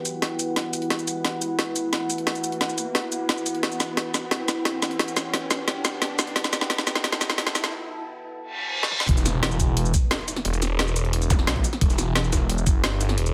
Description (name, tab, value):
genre	dark technical drum and bass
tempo	176 BPM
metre	4/4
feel	straight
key	E minor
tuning	A4 = 438 Hz
part	deep dark ambient pad	sustained chords	0.0-9.1 s	E4 to B5	-33 LUFS	equal	chorus, built-in reverb, sidechain pumping
part	riser, reverse cymbal, impact and zap	sound effects	0.9-11.4 s	none	-36 LUFS	equal	none
part	drum and bass drum kit	drums	0.1-13.3 s	hi-hat, shaker, snare drum, toms	-27 LUFS	equal	overdrive
part	phased detuned saw bass	bass	9.1-13.3 s	E1 to B1	-26 LUFS	equal	phaser, overdrive
part	electronic kick drum	drums	9.1-12.7 s	none	-24 LUFS	equal	overdrive
part	jungle sampler-style drum kit	drums	9.1-13.3 s	hi-hat, snare drum	-37 LUFS	equal	none
room	light reverb, digital ambience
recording	heavily compressed radio sound, high-pass filter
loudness	-24 LUFS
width	mono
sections	0.0-9.1 A section; 9.1-13.3 B section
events	build-up 0.0-9.1; drum fill 0.0-7.7, 8.8; filter sweep 0.0-9.1; break 7.7-9.1; reverse cymbal 8.5-9.1; drop 9.1-13.3; impact 9.1-10.4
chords	0.0 Em; 9.1 N.C.